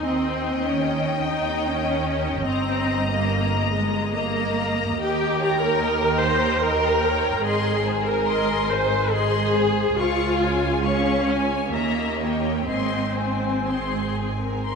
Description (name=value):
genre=classical, slow romantic movement for string orchestra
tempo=60-77 BPM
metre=3/4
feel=rubato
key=unclear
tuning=A4 = 440 Hz
part: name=warm studio violin section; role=melody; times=0.0-14.8 s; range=G5 to Db6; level=-29 LUFS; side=left 6 dB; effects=none
part: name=warm studio violin section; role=second line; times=0.0-14.8 s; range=Ab4 to Ab5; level=-29 LUFS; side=left 2 dB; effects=none
part: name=rich studio viola section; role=accompaniment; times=0.0-14.6 s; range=Ab3 to C5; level=-23 LUFS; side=equal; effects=none
part: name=warm studio cello section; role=bass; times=0.0-14.8 s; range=Db2 to Eb3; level=-29 LUFS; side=right 4 dB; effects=none
part: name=warm studio double bass section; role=bass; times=0.0-14.8 s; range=G1 to Eb2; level=-30 LUFS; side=right 5 dB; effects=none
room=wet cathedral reverb, RT60 5.2 s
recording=in a vast, echoing space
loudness=-20 LUFS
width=side -5 dB against mid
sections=0.0-14.8 A section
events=none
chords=0.1 Eb; 2.5 Eb/G; 5.0 Eb7; 7.4 Ab; 10.0 Db; 11.7 Eb7b9; 12.7 Ab